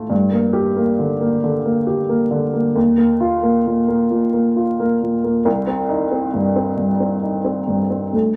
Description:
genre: neoclassical minimalist piano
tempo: 90 BPM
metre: 4/4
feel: rubato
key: unclear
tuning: A4 = 440 Hz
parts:
  - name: dark upright piano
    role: solo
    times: 0.0-8.4 s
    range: C2 to G4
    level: -18 LUFS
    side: equal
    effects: none
room: wet studio reverb, RT60 0.7 s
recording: vinyl crackle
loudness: -18 LUFS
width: mono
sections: 0.0-8.4 A section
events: none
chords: 0.1 Gm; 2.8 Ebsus2; 5.5 Cm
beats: | 0.10 0.76 1.43 2.09 | 2.75 3.43 4.11 4.78 | 5.45 6.12 6.78 7.45 | 8.13

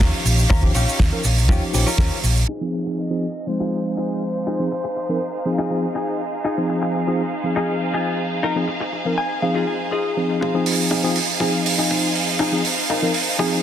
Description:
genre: nu-disco, nu disco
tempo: 121 BPM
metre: 4/4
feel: straight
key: F minor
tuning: A4 = 436 Hz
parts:
  - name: tine electric piano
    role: accompaniment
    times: 0.0-13.6 s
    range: F3 to Bb4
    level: -23 LUFS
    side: equal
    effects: medium stereo tremolo, sidechain pumping, tape echo
  - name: clear chamber violin section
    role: sustained chords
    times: 0.0-13.6 s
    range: Eb4 to F5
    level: -28 LUFS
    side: right 1 dB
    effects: sidechain pumping, low-pass filter
  - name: direct-recorded clean electric guitar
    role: riff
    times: 0.0-13.5 s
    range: Db4 to Ab5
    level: -26 LUFS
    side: left 3 dB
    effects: lush chorus, vintage 12-bit sampler grit, low-pass filter, tape echo
  - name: hollow-body short-scale fingered electric bass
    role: bass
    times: 0.0-2.4 s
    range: Bb1 to Eb2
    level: -19 LUFS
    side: equal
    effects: none
  - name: damped 70s drum kit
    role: drums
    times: 0.0-2.6, 10.4-13.5 s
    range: crash cymbal, hi-hat, shaker, snare drum, toms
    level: -23 LUFS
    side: right 4 dB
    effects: high-pass filter on hats, studio reverb, high-pass filter on cymbals, high-pass filter on toms, high-pass filter on snare, high-pass filter on perc, high-pass filter on room
  - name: kick drum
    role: drums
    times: 0.0-2.1 s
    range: none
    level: -18 LUFS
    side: equal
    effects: studio reverb
  - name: mellow hollow silver concert flute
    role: melody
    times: 3.0-6.2 s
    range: C5 to Eb5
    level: -29 LUFS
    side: left 1 dB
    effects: vintage 12-bit sampler grit, tape echo
room: moderate lush hall reverb, RT60 2.3 s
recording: dense, heavily limited modern master, low-pass filter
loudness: -18 LUFS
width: side -10 dB against mid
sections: 0.0-2.5 A section; 2.5-10.4 B section; 10.4-13.6 C section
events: filter sweep on clean electric guitar 2.5-10.4; filter sweep on violin section 2.5-10.4; filter sweep 2.5-10.4; clean electric guitar fill 8.9-10.4; build-up 10.4-13.6; drum fill 10.4-13.6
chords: 0.0 Eb9; 2.5 Fm7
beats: 0.01 | 0.50 1.00 1.49 1.99 | 2.49 2.98 3.48 3.97 | 4.47 4.96 5.46 5.96 | 6.45 6.95 7.44 7.94 | 8.44 8.93 9.43 9.92 | 10.42 10.91 11.41 11.91 | 12.40 12.90 13.39

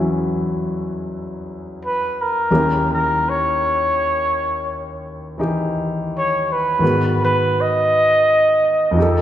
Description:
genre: jazz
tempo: 56 BPM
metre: 4/4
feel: swing 68% on 8ths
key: G# minor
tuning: A4 = 440 Hz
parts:
  - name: clear grand piano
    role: accompaniment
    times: 0.0-9.2 s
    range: D#2 to B4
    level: -21 LUFS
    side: equal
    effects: none
  - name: mellow trumpet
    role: melody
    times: 1.9-9.2 s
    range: A#4 to D#5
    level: -17 LUFS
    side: equal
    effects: none
room: wet recital hall reverb, RT60 1.9 s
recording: recorded in a church or concert hall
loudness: -16 LUFS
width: side -11 dB against mid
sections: 0.0-9.2 A section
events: trumpet solo 0.0-9.2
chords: 0.0 Emaj9; 2.5 D#7b9; 6.8 G#m7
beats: 0.31 1.41 | 2.50 3.58 4.66 5.74 | 6.82 7.90 8.97

